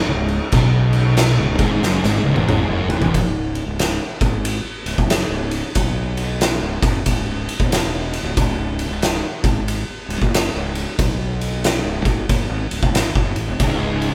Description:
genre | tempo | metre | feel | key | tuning
stoner and doom metal | 92 BPM | 4/4 | swing 63% on 8ths | C# minor | A4 = 440 Hz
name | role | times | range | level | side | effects
tonewheel organ | sustained chords | 0.0-3.1, 13.6-14.1 s | C#3 to D#4 | -31 LUFS | equal | none
thick fuzz guitar | riff | 0.0-3.1, 13.6-14.1 s | C#2 to B2 | -24 LUFS | equal | none
thick fuzz guitar | riff | 0.0-3.1, 13.6-14.1 s | C#2 to B2 | -22 LUFS | equal | distortion
fuzz fingered electric bass | bass | 0.0-14.1 s | C#1 to B1 | -25 LUFS | equal | overdrive
oversized low-tuned drum kit | drums | 0.3-14.1 s | crash cymbal, kick drum, ride cymbal, snare drum, toms | -22 LUFS | equal | none
room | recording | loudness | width
light reverb | band playing live in one room | -19 LUFS | mono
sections
0.0-3.1 A section; 3.1-14.1 B section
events
drum fill 1.8-3.1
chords
0.0 C#m; 3.1 C#5

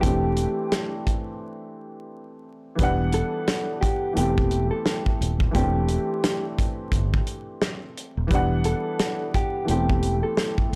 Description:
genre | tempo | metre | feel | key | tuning
hip hop, boom-bap hip-hop | 87 BPM | 4/4 | swing 60% on 16ths | unclear | A4 = 440 Hz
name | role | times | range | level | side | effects
mellow electric guitar | melody | 0.0-10.5 s | G4 to A4 | -31 LUFS | equal | spring reverb, high-pass filter, low-pass filter, analog delay
warm upright piano | accompaniment | 0.0-10.8 s | E3 to F#5 | -30 LUFS | equal | high-pass filter, low-pass filter
fingered electric bass | bass | 0.0-10.8 s | D#1 to G1 | -27 LUFS | equal | transformer saturation
warm soul drum kit | drums | 0.0-10.8 s | hi-hat, kick drum, snare drum | -28 LUFS | equal | none
room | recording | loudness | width
small room ambience | dry, gritty hardware recording, vinyl crackle | -24 LUFS | mono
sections
0.0-2.8 A section; 2.8-10.8 B section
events
break 1.4-2.8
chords
0.0 D9sus4/E; 2.8 Em7; 4.2 Am9/E; 5.5 D9sus4/E; 8.3 Em7; 9.7 Am9/E

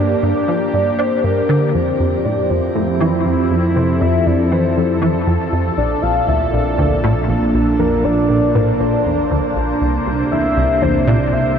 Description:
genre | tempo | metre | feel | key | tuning
ambient, sequencer-driven space music | 119 BPM | 4/4 | straight | unclear | A4 = 440 Hz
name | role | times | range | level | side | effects
soft octave-layered synth lead | melody | 0.0-11.6 s | Bb4 to F5 | -20 LUFS | left 1 dB | chorus, phaser, shimmer reverb, ping-pong delay
phased analog pad | sustained chords | 0.0-11.6 s | Bb2 to C5 | -18 LUFS | right 1 dB | phaser, chorus, shimmer reverb
plucky analog bass | riff | 0.0-11.4 s | Bb1 to D4 | -19 LUFS | equal | ensemble chorus, shimmer reverb, ping-pong delay
analog drone | bass | 2.2-11.6 s | Bb1 to F2 | -23 LUFS | equal | chorus
room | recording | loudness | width
wet huge ambient reverb, RT60 7.9 s | none | -14 LUFS | side -7 dB against mid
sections
0.0-1.7 A section; 1.7-11.6 B section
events
none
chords
0.0 Gm; 1.7 Fmaj7; 5.8 Bbmaj7; 9.8 C7

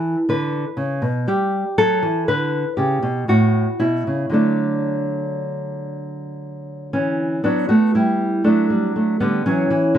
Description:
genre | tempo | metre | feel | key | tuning
classical, baroque-style dance for nylon-string guitar | 57-61 BPM | 3/4 | rubato | D major | A4 = 440 Hz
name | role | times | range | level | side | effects
nylon-string guitar | solo | 0.0-10.0 s | A2 to B4 | -17 LUFS | equal | none
room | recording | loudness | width
light reverb | close, detailed microphones | -17 LUFS | side -10 dB against mid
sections
0.0-7.4 A section; 7.4-10.0 A section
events
none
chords
0.3 Bm/D; 1.3 G; 3.3 A; 4.3 D; 7.4 Bm/F#; 9.4 F#5/E

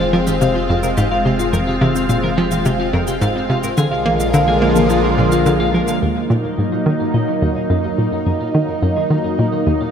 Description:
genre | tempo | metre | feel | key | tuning
ambient, sequencer-driven space music | 107 BPM | 4/4 | straight | Eb minor from 6.0 s | A4 = 440 Hz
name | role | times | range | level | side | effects
lush unison pad | sustained chords | 0.0-9.9 s | D3 to F4 | -18 LUFS | equal | chorus, phaser
twelve-string electric guitar | arpeggios | 0.0-9.9 s | Bb3 to F5 | -25 LUFS | left 4 dB | auto-pan, tape echo
hollow square pluck | riff | 0.0-9.8 s | Eb2 to Bb3 | -18 LUFS | equal | chorus, tape echo
warm sub bass | bass | 0.0-6.0 s | F1 to Bb1 | -25 LUFS | equal | none
pulsing gated texture | texture | 0.0-9.9 s | F5 | -31 LUFS | right 1 dB | chorus, built-in reverb
electronic toms and cabasa | percussion | 0.3-6.0 s | none | -26 LUFS | right 2 dB | tape echo
room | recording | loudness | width
wet lush hall reverb, RT60 3.0 s | none | -14 LUFS | side -8 dB against mid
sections
0.0-6.0 A section; 6.0-9.9 B section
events
none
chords
0.0 Fm; 3.8 Bb7; 6.0 Ebm

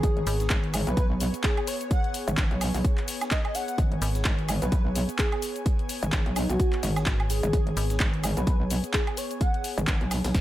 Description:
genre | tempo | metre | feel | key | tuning
bass house | 128 BPM | 4/4 | swing 57% on 16ths | G# minor | A4 = 440 Hz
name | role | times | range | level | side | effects
airy dreamy lead | melody | 0.0-9.6 s | D#4 to F#5 | -33 LUFS | equal | chorus, ping-pong delay
metallic wobble bass | bass | 0.0-10.4 s | F#1 to B1 | -27 LUFS | equal | chorus, overdrive, sidechain pumping
breakbeat sampler-style drum kit | drums | 0.0-10.4 s | hi-hat, snare drum | -42 LUFS | equal | none
electronic kick drum | drums | 0.0-10.4 s | none | -26 LUFS | equal | none
house drum kit | drums | 0.0-10.4 s | handclaps, hi-hat, shaker, snare drum, woodblock | -32 LUFS | equal | none
airy breathy pad | texture | 0.0-10.4 s | B3 to A#5 | -36 LUFS | equal | chorus, sidechain pumping
metallic FM bass | bass | 0.3-0.5, 4.0-4.2, 7.1-8.0 s | G#1 | -26 LUFS | equal | tube saturation, sidechain pumping
room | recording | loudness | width
little or no reverb | none | -24 LUFS | side -14 dB against mid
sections
0.0-10.4 A section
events
none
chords
0.0 G#m

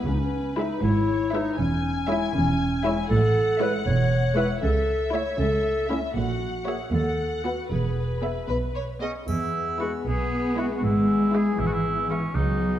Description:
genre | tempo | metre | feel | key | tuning
cinematic, playful, whimsical film cue | 78 BPM (dotted quarters) | 6/8 | straight | E major | A4 = 439 Hz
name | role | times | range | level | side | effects
rich studio violin section | melody | 0.0-12.3 s | B4 to G#5 | -34 LUFS | left 4 dB | none
mellow clarinet | second line | 0.0-8.5 s | C#4 to C#5 | -26 LUFS | left 1 dB | none
rich studio double bass section | bass | 0.1-12.8 s | E1 to E2 | -28 LUFS | right 2 dB | none
warm studio cello section | bass | 0.1-12.8 s | C#2 to B3 | -27 LUFS | right 1 dB | none
warm studio violin section | second line | 0.6-12.3 s | E4 to F#5 | -33 LUFS | left 3 dB | none
warm studio viola section | accompaniment | 0.6-12.3 s | G#3 to G#4 | -33 LUFS | right 1 dB | none
clear oboe | second line | 9.0-12.8 s | C#4 to G#4 | -30 LUFS | right 3 dB | none
warm French horn section | sustained chords | 9.3-12.8 s | B3 to G#4 | -30 LUFS | left 6 dB | none
triangle | percussion | 9.3-10.3 s | none | -52 LUFS | left 2 dB | none
room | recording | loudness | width
moderate scoring stage reverb, RT60 1.7 s | dark, warm production | -22 LUFS | side -11 dB against mid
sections
0.0-9.3 A section; 9.3-12.8 A section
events
none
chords
0.1 C#m7; 1.6 C#m/E; 3.1 Amaj7; 4.6 A/C#; 6.2 F#7/A#; 6.9 B7/D#; 7.7 E; 10.8 E/G#

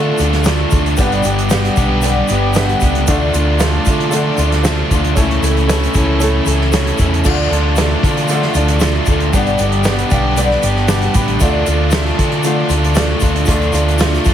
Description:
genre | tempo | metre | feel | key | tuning
folk rock and heartland rock | 115 BPM | 4/4 | straight | D dorian | A4 = 440 Hz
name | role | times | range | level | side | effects
clear upright piano | accompaniment | 0.0-14.3 s | E4 to B5 | -26 LUFS | right 8 dB | none
picked old ladder-braced acoustic guitar | accompaniment | 0.0-14.3 s | G2 to A4 | -20 LUFS | left 3 dB | none
rich chamber string section | sustained chords | 0.0-14.3 s | A3 to D5 | -25 LUFS | left 1 dB | none
crunchy overdriven guitar | riff | 0.0-14.3 s | G2 to G4 | -18 LUFS | right 1 dB | none
hollow-body short-scale fingered electric bass | bass | 0.0-14.3 s | G1 to D3 | -17 LUFS | equal | none
unplugged drum kit | drums | 0.2-14.3 s | crash cymbal, hi-hat, kick drum, snare drum | -18 LUFS | equal | none
egg shaker | percussion | 0.2-14.3 s | none | -30 LUFS | left 10 dB | none
room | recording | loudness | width
light reverb, small room ambience | heavily compressed radio sound | -12 LUFS | side -10 dB against mid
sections
0.0-14.3 A section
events
upright piano fill 9.9-11.4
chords
0.0 Dm; 1.0 G; 3.1 Dm; 5.2 A/C#; 7.3 Dm; 9.3 G; 11.4 Dm

